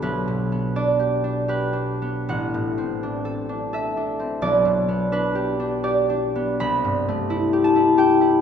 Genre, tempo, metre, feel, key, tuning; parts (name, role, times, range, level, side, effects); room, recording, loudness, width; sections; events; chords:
classical, solo harp piece; 82 BPM; 3/4; uneven beats, rubato; G major; A4 = 437 Hz
concert harp; solo; 0.0-8.4 s; A1 to B5; -19 LUFS; equal
wet church reverb, RT60 3.0 s; recorded in a church or concert hall; -20 LUFS; side -8 dB against mid
0.0-8.4 A section
0.0 G/B; 2.3 D7/A; 4.4 G/B; 6.6 C6